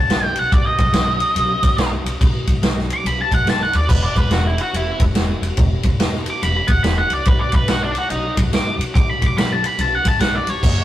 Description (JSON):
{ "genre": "blues rock power trio and southern rock", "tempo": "142 BPM", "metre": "4/4", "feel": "swing 63% on 8ths", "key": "unclear", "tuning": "A4 = 438 Hz", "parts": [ { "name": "octave-fuzz lead guitar", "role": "melody", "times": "0.0-10.8 s", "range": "D4 to D6", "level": "-20 LUFS", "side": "equal", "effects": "distortion, tape echo" }, { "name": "upright bass", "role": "bass", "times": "0.0-10.8 s", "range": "E1 to D#2", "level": "-22 LUFS", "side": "equal", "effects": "none" }, { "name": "vintage drum kit", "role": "drums", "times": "0.1-10.8 s", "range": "crash cymbal, kick drum, ride cymbal, snare drum", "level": "-18 LUFS", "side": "equal", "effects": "none" } ], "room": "light reverb", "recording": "rough rehearsal-room recording, tube saturation", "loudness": "-15 LUFS", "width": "side -13 dB against mid", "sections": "0.0-10.8 A section", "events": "lead electric guitar solo 0.0-10.8", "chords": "0.0 B; 3.9 N.C.; 7.3 G#dim (rootless)" }